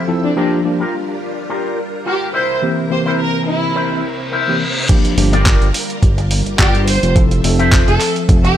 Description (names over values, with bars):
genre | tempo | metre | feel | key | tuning
nu-disco, nu disco | 106 BPM | 4/4 | swing 55% on 16ths | G dorian | A4 = 440 Hz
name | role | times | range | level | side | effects
tine electric piano | accompaniment | 0.0-8.5 s | E3 to E5 | -20 LUFS | left 1 dB | overdrive, fast stereo tremolo
string machine, full ensemble | sustained chords | 0.0-8.6 s | C3 to E5 | -25 LUFS | equal | phaser, ensemble chorus, sidechain pumping
warm symphonic violin section | melody | 0.2-8.6 s | D4 to C5 | -21 LUFS | right 1 dB | dub echo
electric guitar with an envelope filter | riff | 0.2-8.5 s | E4 to E5 | -22 LUFS | left 2 dB | lush chorus, low-pass filter, dub echo
reverse cymbal | sound effects | 4.0-4.9 s | none | -22 LUFS | left 1 dB | none
dusty soul sampler-style drum kit | drums | 4.9-8.5 s | crash cymbal, handclaps, hi-hat | -20 LUFS | right 1 dB | overdrive
electronic kick drum | drums | 4.9-8.4 s | none | -13 LUFS | equal | overdrive
chorused synth bass | bass | 5.2-8.6 s | F1 to G1 | -15 LUFS | equal | none
room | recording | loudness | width
light reverb | none | -13 LUFS | side -11 dB against mid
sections
0.0-4.9 A section; 4.9-8.6 B section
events
reverse cymbal 4.0-4.9; drop 4.9-8.6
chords
0.4 Gm7; 2.3 C7; 4.9 Gm7; 7.2 Fmaj7